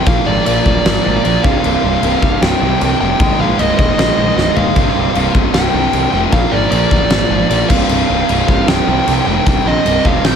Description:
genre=hard rock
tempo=153 BPM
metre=4/4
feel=straight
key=C minor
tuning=A4 = 437 Hz
part: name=dark smooth lead guitar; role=melody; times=0.0-10.4 s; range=D5 to G5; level=-17 LUFS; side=right 1 dB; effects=overdrive, slapback echo
part: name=distorted electric guitar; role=riff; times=0.0-10.4 s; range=C2 to Bb3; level=-22 LUFS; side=left 1 dB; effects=overdrive, slapback echo
part: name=overdriven semi-hollow guitar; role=riff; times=0.0-10.4 s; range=C2 to Bb3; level=-19 LUFS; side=right 10 dB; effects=none
part: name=tight distorted guitar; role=riff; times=0.0-10.4 s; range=C2 to Bb3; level=-22 LUFS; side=left 10 dB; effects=distortion, slapback echo
part: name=fuzz picked electric bass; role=bass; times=0.1-10.4 s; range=C1 to C2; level=-18 LUFS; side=left 1 dB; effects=overdrive
part: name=big rock drum kit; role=drums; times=0.1-10.3 s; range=crash cymbal, kick drum, snare drum, toms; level=-16 LUFS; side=left 1 dB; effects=none
room=moderate lush hall reverb, RT60 1.6 s, small room ambience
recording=big arena sound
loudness=-11 LUFS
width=side -7 dB against mid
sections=0.0-10.4 A section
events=drum fill 4.4-4.8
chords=0.1 Bb; 1.4 C5; 3.2 Ab/C; 4.8 C5; 6.3 Bb; 7.7 C5; 9.5 Cm

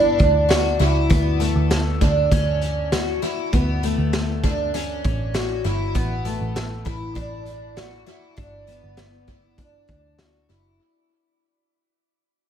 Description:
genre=dream pop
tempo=99 BPM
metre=4/4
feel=straight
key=D major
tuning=A4 = 441 Hz
part: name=picked twelve-string acoustic guitar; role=arpeggios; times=0.0-10.8 s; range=A3 to F#4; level=-22 LUFS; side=equal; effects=lush chorus, tape echo, shimmer reverb
part: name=vintage muted picked electric bass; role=bass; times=0.0-10.8 s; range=F#1 to D2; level=-23 LUFS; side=equal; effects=none
part: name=raw garage drum kit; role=drums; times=0.2-10.6 s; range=hi-hat, kick drum, snare drum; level=-24 LUFS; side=equal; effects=tape echo
room=moderate spring reverb, RT60 2.5 s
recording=echo-heavy mix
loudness=-19 LUFS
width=side -9 dB against mid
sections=0.0-10.8 A section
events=fade-out 0.0-10.8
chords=0.0 Gmaj7(no3); 1.1 Dmaj7; 5.9 Asus4; 8.4 Gmaj7

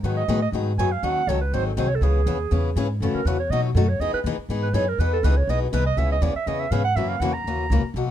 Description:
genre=acoustic string swing (jazz manouche)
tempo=243 BPM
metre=4/4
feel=swing 55% on 8ths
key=E major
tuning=A4 = 440 Hz
part: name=breathy clarinet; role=second line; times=0.0-7.9 s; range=F#4 to A#5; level=-26 LUFS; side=right 5 dB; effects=none
part: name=picked steel-string acoustic guitar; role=accompaniment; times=0.0-8.1 s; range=B2 to A4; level=-26 LUFS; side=left 7 dB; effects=none
part: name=upright bass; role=bass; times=0.0-8.1 s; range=G#1 to B2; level=-23 LUFS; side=equal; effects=none
room=light reverb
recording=close, detailed microphones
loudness=-20 LUFS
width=side -11 dB against mid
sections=0.0-6.0 A section; 6.0-8.1 A section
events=clarinet solo 0.0-8.1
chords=0.0 G#m7; 1.0 D#m7b5; 1.5 G#7; 2.0 C#m7; 3.0 F#m7; 3.5 B7; 4.0 Emaj7; 6.0 C#m7; 7.0 F#7

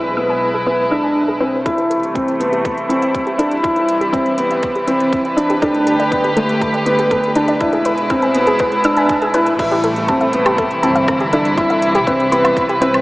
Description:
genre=piano and strings electronica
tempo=121 BPM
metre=4/4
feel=straight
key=A minor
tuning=A4 = 444 Hz
part: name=dark chamber string section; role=sustained chords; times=0.0-13.0 s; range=B2 to B4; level=-19 LUFS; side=equal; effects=sidechain pumping, low-pass filter
part: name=warm studio double bass section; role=bass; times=0.0-1.6, 9.6-13.0 s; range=G1 to C2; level=-29 LUFS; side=equal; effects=sidechain pumping
part: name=soft round pluck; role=arpeggios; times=0.2-12.9 s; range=G4 to E6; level=-21 LUFS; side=equal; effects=chorus, sidechain pumping, diffuse ambient delay
part: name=felt-muted upright piano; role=riff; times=0.2-13.0 s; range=A3 to E4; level=-16 LUFS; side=equal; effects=diffuse ambient delay
part: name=electronic kick drum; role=drums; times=1.7-12.7 s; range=none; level=-26 LUFS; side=equal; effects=none
part: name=organic electronic drum kit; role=drums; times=1.7-13.0 s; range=crash cymbal, hi-hat, rim click, woodblock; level=-27 LUFS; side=equal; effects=high-pass filter on hats, high-pass filter on cymbals, high-pass filter on perc, high-pass filter on snare, high-pass filter on room
room=wet lush hall reverb, RT60 2.5 s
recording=dreamy mix soaked in reverb, small speaker sound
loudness=-13 LUFS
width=side -19 dB against mid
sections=0.0-1.7 A section; 1.7-9.6 B section; 9.6-13.0 C section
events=filter sweep on synth arpeggio sound 0.0-1.7, 1.7-9.6; build-up 1.7-9.6; drop 9.6-13.0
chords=0.0 E/B; 1.7 Am7; 3.6 Cmaj7; 5.6 Gadd9; 7.6 E/B; 9.6 Am7; 11.6 Cmaj7

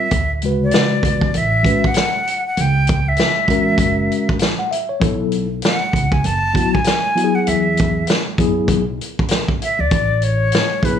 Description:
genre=hip hop, jazz-hop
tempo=98 BPM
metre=4/4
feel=swing 57% on 16ths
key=unclear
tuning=A4 = 440 Hz
part: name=silver concert flute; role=melody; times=0.0-11.0 s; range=B4 to A5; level=-19 LUFS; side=equal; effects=none
part: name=mellow tine electric piano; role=accompaniment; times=0.0-11.0 s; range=C#3 to F#5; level=-19 LUFS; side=left 2 dB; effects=medium stereo tremolo
part: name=upright bass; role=bass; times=0.1-11.0 s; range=F#1 to F#2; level=-21 LUFS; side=right 1 dB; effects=none
part: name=vintage drum kit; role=drums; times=0.1-11.0 s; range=hi-hat, kick drum, snare drum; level=-18 LUFS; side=equal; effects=none
room=light reverb, small room ambience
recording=studio reverb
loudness=-15 LUFS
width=side -8 dB against mid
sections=0.0-11.0 A section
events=none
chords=0.1 Dmaj9; 2.6 C#m; 3.8 F#; 5.0 B5; 7.5 E; 9.9 A69

